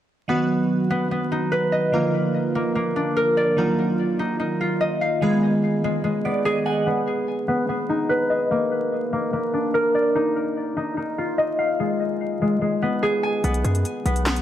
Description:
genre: hip hop, trap.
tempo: 146 BPM.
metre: 4/4.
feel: half-time.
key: unclear.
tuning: A4 = 440 Hz.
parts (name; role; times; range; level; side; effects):
glassy digital keys; accompaniment; 0.3-6.9 s; D3 to Gb5; -23 LUFS; right 3 dB; chorus.
concert harp; arpeggios; 0.3-14.4 s; Ab3 to Ab5; -21 LUFS; left 1 dB; low-pass filter, ping-pong delay.
hard-hitting 808-style bass; bass; 13.4-14.4 s; B1 to F#2; -21 LUFS; equal; none.
trap drum kit; drums; 13.4-14.4 s; handclaps, hi-hat, snare drum; -26 LUFS; equal; none.
room: light reverb, digital ambience.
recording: vinyl crackle.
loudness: -20 LUFS.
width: side -11 dB against mid.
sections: 0.3-6.9 A section; 6.9-14.4 B section.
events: synth keys fill 6.0-6.9; filter sweep on harp 6.9-13.4.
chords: 0.3 B; 1.9 Bb; 3.6 Ebmadd9; 5.2 Abm; 6.9 B; 8.5 Bb; 10.2 Ebsus2; 11.8 Abm; 13.4 B.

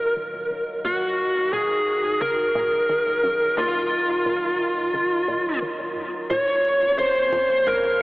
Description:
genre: ambient, sequencer-driven space music.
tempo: 88 BPM.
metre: 4/4.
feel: straight.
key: Eb dorian.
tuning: A4 = 440 Hz.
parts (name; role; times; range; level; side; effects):
biting lead guitar; melody; 0.0-8.0 s; F4 to Db5; -20 LUFS; equal; overdrive, tape echo.
phased analog pad; sustained chords; 0.0-8.0 s; C3 to F5; -34 LUFS; equal; phaser, chorus.
hollow square pluck; riff; 0.0-7.8 s; Eb2 to Eb3; -36 LUFS; equal; chorus, tape echo.
warm sub bass; bass; 0.0-8.0 s; Eb1 to Bb1; -54 LUFS; equal; none.
electronic hi-hat; percussion; 6.3-8.0 s; none; -35 LUFS; equal; none.
room: wet huge ambient reverb, RT60 7.2 s.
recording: dreamy mix soaked in reverb, telephone sound.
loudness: -20 LUFS.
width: side -21 dB against mid.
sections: 0.0-8.0 A section.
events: fade-in on analog synth pad 0.0-8.0; filter sweep on synth arpeggio sound 0.0-8.0.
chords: 0.0 Ebmadd9; 6.3 Bbmadd9.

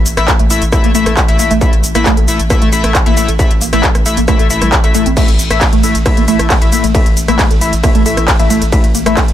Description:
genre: driving peak-time techno.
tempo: 135 BPM.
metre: 4/4.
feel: straight.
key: unclear.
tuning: A4 = 440 Hz.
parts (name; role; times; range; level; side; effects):
saturated sub bass; bass; 0.0-9.3 s; A1; -18 LUFS; equal; overdrive, sidechain pumping, low-pass filter.
techno drum kit; drums; 0.1-9.3 s; crash cymbal, handclaps, hi-hat, ride cymbal, rim click, shaker; -16 LUFS; equal; overdrive.
sync-sweep polysynth; stabs; 0.2-9.2 s; A3 to E5; -16 LUFS; left 3 dB; chorus, sidechain pumping, digital delay.
woody wave-folded pluck; riff; 0.3-9.2 s; G3 to A4; -18 LUFS; right 1 dB; tube saturation, analog chorus, sidechain pumping, digital delay.
electronic kick drum; drums; 0.3-9.3 s; none; -13 LUFS; equal; distortion.
room: little or no reverb.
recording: none.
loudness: -9 LUFS.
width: side -11 dB against mid.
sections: 0.0-9.3 A section.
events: none.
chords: 0.0 A5.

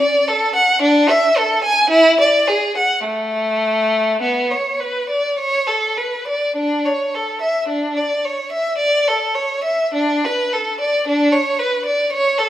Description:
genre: classical, baroque-style suite movement for unaccompanied violin.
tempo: 50-57 BPM.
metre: 3/4.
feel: rubato.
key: A major.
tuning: A4 = 440 Hz.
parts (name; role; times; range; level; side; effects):
warm violin; solo; 0.0-12.5 s; A3 to G#5; -15 LUFS; equal; none.
room: wet recital hall reverb, RT60 1.5 s.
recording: none.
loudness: -15 LUFS.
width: side -12 dB against mid.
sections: 0.0-6.6 A section; 6.6-12.5 A section.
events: none.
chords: none.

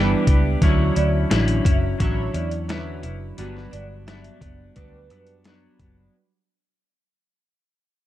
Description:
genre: indie pop, bedroom pop.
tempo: 87 BPM.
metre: 4/4.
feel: straight.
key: unclear.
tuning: A4 = 440 Hz.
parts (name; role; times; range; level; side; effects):
chorused retro synth keys; accompaniment; 0.0-6.2 s; F#3 to D5; -27 LUFS; right 6 dB; cassette tape.
clean electric guitar; accompaniment; 0.0-6.2 s; G2 to G4; -27 LUFS; left 3 dB; wide subtle chorus, warbly pitch drift.
vintage muted fingered electric bass; bass; 0.0-6.1 s; F#1 to F#2; -23 LUFS; equal; none.
lo-fi sampler-style drum kit; drums; 0.3-6.0 s; hi-hat, kick drum, snare drum; -21 LUFS; equal; overdrive.
vibraphone with medium hard mallets; second line; 1.0-5.3 s; B4 to E5; -32 LUFS; right 4 dB; ensemble chorus, slapback echo, plate reverb.
room: light reverb.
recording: dark, warm production.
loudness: -18 LUFS.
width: side -14 dB against mid.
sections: 0.0-6.1 A section.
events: fade-out 0.0-6.1.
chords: 0.0 Em7; 0.6 Dmaj9; 3.4 Gmaj7.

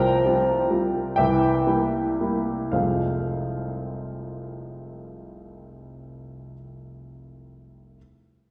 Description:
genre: classical, romantic duo for bassoon and grand piano.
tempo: 36-46 BPM (dotted quarters).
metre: 6/8.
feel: rubato.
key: F minor.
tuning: A4 = 440 Hz.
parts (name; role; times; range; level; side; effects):
warm bassoon; melody; 0.0-1.9 s; E3 to F3; -26 LUFS; equal; none.
clear grand piano; accompaniment; 0.0-8.0 s; F1 to Bb5; -28 LUFS; equal; none.
room: wet scoring stage reverb, RT60 1.9 s.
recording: heard from further back in the room.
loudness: -24 LUFS.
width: mono.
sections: 0.0-2.7 A section; 2.7-5.7 B section.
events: slowing down 0.0-2.7.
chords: 0.0 C7sus4; 1.2 C7; 2.7 Fm.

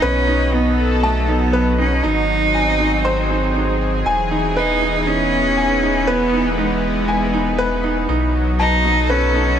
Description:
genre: piano and strings electronica.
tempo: 119 BPM.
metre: 4/4.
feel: straight.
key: E major.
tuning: A4 = 438 Hz.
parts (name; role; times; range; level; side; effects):
rich cello; melody; 0.0-9.6 s; G#3 to D#4; -19 LUFS; right 1 dB; none.
lush unison pad; sustained chords; 0.0-9.6 s; E3 to D#5; -22 LUFS; equal; chorus.
bright baby grand piano; riff; 0.0-9.6 s; D#4 to A5; -21 LUFS; equal; ping-pong delay.
warm sub bass; bass; 0.0-9.6 s; E1 to B1; -21 LUFS; equal; none.
room: light reverb, studio ambience.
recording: none.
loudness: -15 LUFS.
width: side -9 dB against mid.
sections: 0.0-9.6 A section.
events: none.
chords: 0.0 B7; 2.0 G#7; 4.1 Emaj7; 8.1 B7.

